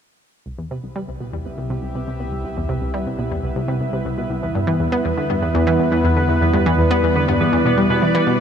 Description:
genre	ambient, sequencer-driven space music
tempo	121 BPM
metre	4/4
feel	straight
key	E minor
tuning	A4 = 440 Hz
part	sweeping resonant pad	sustained chords	0.5-8.4 s	C3 to E5	-22 LUFS	right 1 dB	chorus, shimmer reverb
part	analog pluck	riff	0.5-8.3 s	C2 to B3	-20 LUFS	equal	chorus, ping-pong delay
part	round analog bass	bass	0.5-8.4 s	C2 to E2	-26 LUFS	equal	none
part	pulsing gated texture	texture	1.0-8.4 s	B3 to B4	-26 LUFS	right 1 dB	chorus, built-in reverb, shimmer reverb
room	wet huge ambient reverb, RT60 7.5 s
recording	none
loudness	-17 LUFS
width	side -8 dB against mid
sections	0.5-8.4 A section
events	fade-in on synth arpeggio sound 0.5-8.4; fade-in on analog synth pad 0.5-8.4; fade-in on analog synth bass 0.5-8.4; fade-in on synth texture 0.5-8.4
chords	0.5 C; 4.4 Em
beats	| 0.46 0.96 1.45 1.95 | 2.44 2.94 3.44 3.93 | 4.43 4.92 5.42 5.92 | 6.41 6.91 7.40 7.90 | 8.39

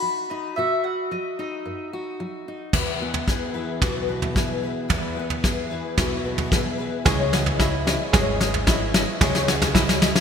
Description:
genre	indie folk with a building arrangement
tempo	111 BPM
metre	4/4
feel	straight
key	E major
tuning	A4 = 441 Hz
part	mandolin	melody	0.0-2.4 s	D#5 to B5	-26 LUFS	left 2 dB	ping-pong delay
part	fingerpicked steel-string acoustic guitar	accompaniment	0.0-9.2 s	E2 to G#4	-31 LUFS	equal	none
part	picked twelve-string acoustic guitar	accompaniment	2.7-10.2 s	C#3 to D#5	-29 LUFS	left 7 dB	ensemble chorus
part	upright bass	bass	2.7-10.1 s	G#1 to E2	-30 LUFS	equal	none
part	soft brush drum kit	drums	2.7-10.2 s	crash cymbal, kick drum, snare drum, toms	-21 LUFS	equal	gated reverb
part	pedal harmonium	sustained chords	7.0-10.2 s	C#3 to G#3	-34 LUFS	left 3 dB	none
part	clear upright piano	accompaniment	7.1-10.2 s	C#2 to F#5	-32 LUFS	right 1 dB	none
part	open-back banjo	arpeggios	7.1-10.2 s	E4 to G#4	-28 LUFS	right 5 dB	ping-pong delay
room	moderate lush hall reverb, RT60 2.8 s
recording	bright 1980s-style digital production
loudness	-20 LUFS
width	side -7 dB against mid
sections	0.0-2.7 A section; 2.7-10.2 B section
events	build-up 2.7-10.2; drum fill 2.7-10.2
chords	0.0 B; 2.7 E; 7.1 C#madd9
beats	0.03 | 0.57 1.11 1.65 2.19 | 2.74 3.28 3.82 4.36 | 4.90 5.44 5.98 6.52 | 7.06 7.60 8.13 8.67 | 9.21 9.75

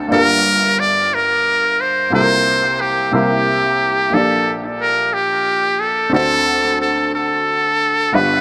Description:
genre	gospel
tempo	60 BPM (dotted quarters)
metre	6/8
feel	straight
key	unclear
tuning	A4 = 443 Hz
part	warm upright piano	accompaniment	0.0-8.4 s	G1 to D5	-22 LUFS	equal	tape echo
part	trumpet with metal mute	melody	0.1-8.4 s	G4 to D5	-17 LUFS	equal	tape echo
room	moderate spring reverb, RT60 1.8 s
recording	echo-heavy mix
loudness	-16 LUFS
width	mono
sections	0.0-8.4 A section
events	none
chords	0.1 Gm7; 2.1 C7sus4; 3.1 C7; 4.1 Bb6; 6.1 D7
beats	| 0.11 1.12 | 2.12 3.12 | 4.13 5.13 | 6.13 7.13 | 8.14

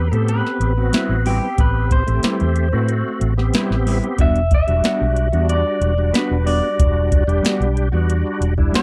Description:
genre	straight-eighth soul blues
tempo	92 BPM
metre	4/4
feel	straight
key	E minor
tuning	A4 = 440 Hz
part	electric guitar through a small old amp	melody	0.0-8.8 s	G4 to E5	-25 LUFS	equal	spring reverb
part	bright tonewheel organ	accompaniment	0.0-8.8 s	G3 to G4	-26 LUFS	equal	chorus vibrato, slow rotary speaker
part	vintage muted fingered electric bass	bass	0.0-8.7 s	E1 to A2	-21 LUFS	equal	none
part	soft vintage rhythm box	drums	0.1-8.8 s	hi-hat, kick drum, snare drum	-20 LUFS	equal	none
part	mellow electric guitar	stabs	0.9-8.8 s	G3 to B4	-26 LUFS	equal	lush chorus
room	little or no reverb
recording	dry, close 1970s-style studio recording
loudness	-18 LUFS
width	mono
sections	0.0-8.8 A section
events	none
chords	0.0 Am9; 4.2 Em9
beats	0.28 0.94 | 1.58 2.23 2.89 3.54 | 4.19 4.84 5.49 6.14 | 6.79 7.44 8.09 8.74

